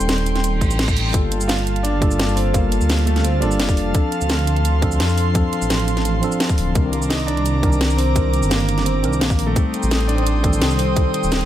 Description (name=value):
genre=liquid drum and bass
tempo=171 BPM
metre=4/4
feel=straight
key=G minor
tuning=A4 = 440 Hz
part: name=mellow tine electric piano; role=accompaniment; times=0.0-11.5 s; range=Eb3 to Bb4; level=-24 LUFS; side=moving between left 5 dB and right 5 dB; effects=auto-pan, tape echo
part: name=airy breathy pad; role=sustained chords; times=0.0-11.5 s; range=F5 to Eb6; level=-27 LUFS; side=equal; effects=chorus, sidechain pumping
part: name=dark detuned saw bass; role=bass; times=0.0-11.5 s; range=D1 to F2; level=-20 LUFS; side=equal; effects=none
part: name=drum and bass drum kit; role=drums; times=0.0-11.5 s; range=cabasa, hi-hat, snare drum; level=-24 LUFS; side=equal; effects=overdrive, studio reverb
part: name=reverse cymbal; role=sound effects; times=0.5-1.1 s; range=none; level=-28 LUFS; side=right 4 dB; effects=none
part: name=electronic kick drum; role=drums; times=0.6-11.0 s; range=none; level=-19 LUFS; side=equal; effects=overdrive, studio reverb
part: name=clear concert grand piano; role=melody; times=1.5-4.1, 7.1-11.4 s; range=A3 to F4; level=-25 LUFS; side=right 2 dB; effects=digital delay
room=little or no reverb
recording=none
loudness=-16 LUFS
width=side -12 dB against mid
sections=0.0-11.5 A section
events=reverse cymbal 0.5-1.1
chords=0.0 Am7b5; 1.1 Gm9; 3.9 Dm7; 6.8 Cm9; 9.6 Am7b5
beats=0.09 0.44 0.79 | 1.14 1.49 1.84 2.19 | 2.54 2.90 3.25 3.60 | 3.95 4.30 4.65 5.00 | 5.35 5.70 6.05 6.40 | 6.75 7.11 7.46 7.81 | 8.16 8.51 8.86 9.21 | 9.56 9.91 10.26 10.61 | 10.96 11.32